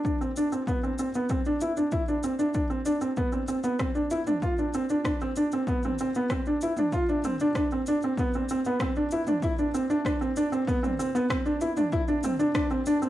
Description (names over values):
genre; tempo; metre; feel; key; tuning
piano and strings electronica; 96 BPM; 4/4; straight; unclear; A4 = 440 Hz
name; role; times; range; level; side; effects
electronic kick drum; drums; 0.0-12.7 s; none; -32 LUFS; left 1 dB; overdrive, cassette tape
felt-muted upright piano; riff; 0.1-13.1 s; B3 to F4; -25 LUFS; right 1 dB; cassette tape, tape echo
deep house drum kit; drums; 0.1-13.1 s; rim click, shaker, toms; -36 LUFS; equal; overdrive, cassette tape
room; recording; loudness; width
wet studio reverb, RT60 0.6 s; home recording on cassette; -25 LUFS; side -13 dB against mid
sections
0.0-13.1 A section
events
build-up 0.0-13.1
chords
none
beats
0.05 | 0.67 1.30 1.92 2.55 | 3.17 3.80 4.42 5.05 | 5.67 6.30 6.92 7.55 | 8.17 8.80 9.42 10.05 | 10.67 11.30 11.92 12.55